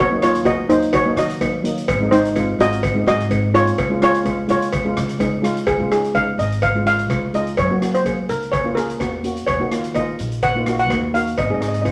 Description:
calypso; 126 BPM; 4/4; straight; Db major; A4 = 439 Hz
steel pan; melody; 0.0-11.9 s; Eb4 to Gb5; -21 LUFS; equal
upright bass; bass; 0.0-11.9 s; Ab1 to Gb3; -28 LUFS; equal
steel pan; accompaniment; 0.1-11.9 s; Gb3 to Ab4; -25 LUFS; equal
street-band drum kit; drums; 0.2-11.9 s; hi-hat, kick drum, rim click; -31 LUFS; equal
cowbell; percussion; 0.5-11.9 s; -28 LUFS; equal
moderate studio reverb, RT60 0.8 s; -19 LUFS; mono
0.0-5.7 A section; 5.7-11.9 B section
0.0 Ebm; 1.9 Ab; 3.8 Db; 7.6 Gb; 9.5 Ebm; 11.4 Ab
0.46 0.93 1.41 | 1.88 2.36 2.83 3.31 | 3.78 4.26 4.73 5.21 | 5.68 6.16 6.63 7.11 | 7.58 8.06 8.53 9.01 | 9.48 9.95 10.43 10.90 | 11.38 11.86

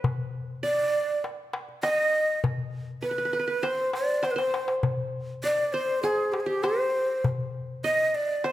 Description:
Arabic maqam ensemble; 100 BPM; 4/4; straight; A4 = 439 Hz
qanun; second line; 0.0-8.5 s; G4 to Eb5; -31 LUFS; equal
darbuka; percussion; 0.0-8.5 s; -30 LUFS; left 2 dB
breathy ney; melody; 0.6-8.5 s; G4 to Eb5; -26 LUFS; right 1 dB
moderate recital hall reverb, RT60 1.7 s; -24 LUFS; side -14 dB against mid
0.0-8.5 A section
drum fill 4.2-4.8
| 0.04 0.64 1.24 1.84 | 2.44 3.04 3.64 4.24 | 4.84 5.44 6.04 6.64 | 7.25 7.85 8.45

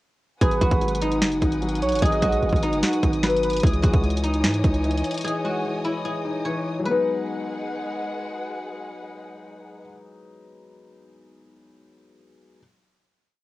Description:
hip hop, trap; 149 BPM; 4/4; half-time; G# minor; A4 = 440 Hz
guzheng; melody; 0.4-8.9 s; D#4 to C#5; -26 LUFS; left 1 dB; cassette tape
gliding portamento lead; second line; 0.4-3.6 s; B4 to D#5; -27 LUFS; right 3 dB; chorus, cassette tape, tape echo
dark concert grand piano; accompaniment; 0.4-12.6 s; E3 to D#4; -31 LUFS; left 2 dB; cassette tape
dark symphonic string section; sustained chords; 0.4-9.9 s; G#3 to D#6; -33 LUFS; left 1 dB; cassette tape
hard-hitting 808-style bass; bass; 0.4-5.0 s; F#1 to G#2; -25 LUFS; equal
trap drum kit; drums; 0.4-5.3 s; hi-hat, kick drum, snare drum; -23 LUFS; equal; cassette tape
small room ambience; home recording on cassette; -20 LUFS; side -17 dB against mid
0.4-6.9 hook; 6.9-10.1 final chord
0.4 G#m7; 3.6 C#madd9; 6.9 G#m7
| 0.41 0.81 1.22 1.62 | 2.02 2.43 2.83 3.23 | 3.63 4.04 4.44 4.84 | 5.25 5.65 6.05 6.45 | 6.86 7.26 7.66 8.06 | 8.47 8.87 9.27 9.67

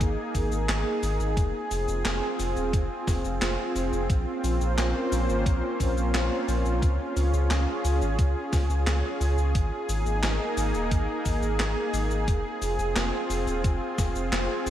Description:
synthwave; 88 BPM; 4/4; straight; F minor; A4 = 443 Hz
lush unison pad; sustained chords; 0.0-14.7 s; Bb3 to C5; -28 LUFS; right 1 dB; chorus, sidechain pumping
round analog bass; bass; 0.0-14.7 s; Eb1 to Db2; -27 LUFS; equal
electronic kick drum; drums; 0.0-14.1 s; -25 LUFS; equal
gated 80s digital drum machine; drums; 0.0-14.7 s; cabasa, handclaps, hi-hat, snare drum; -33 LUFS; equal; gated reverb, gated reverb snare
moderate cathedral reverb, RT60 4.7 s; dreamy mix soaked in reverb; -24 LUFS; side -11 dB against mid
0.0-14.7 A section
0.0 Absus2; 1.4 Fm; 4.1 Bbmadd9; 6.8 Db; 9.6 Absus2; 12.3 Fm
0.01 0.69 | 1.37 2.05 2.73 3.42 | 4.10 4.78 5.46 6.14 | 6.82 7.51 8.19 8.87 | 9.55 10.23 10.91 11.60 | 12.28 12.96 13.64 14.32

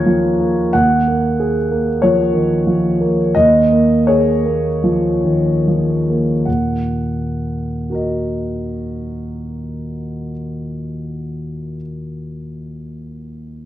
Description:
classical, impressionist solo piano; 34-48 BPM; 4/4; rubato; Eb minor; A4 = 440 Hz
warm grand piano; solo; 0.0-13.7 s; Eb2 to Ab6; -15 LUFS; equal
moderate recital hall reverb, RT60 1.5 s; dark, warm production; -14 LUFS; side -13 dB against mid
0.0-6.5 A section; 6.5-12.1 B section
slowing down 0.0-6.5
0.0 Db69/Eb; 0.7 Ebm11; 6.5 Ebm
| 0.72 1.99 3.33 4.82 | 6.46 7.89 9.32 10.74

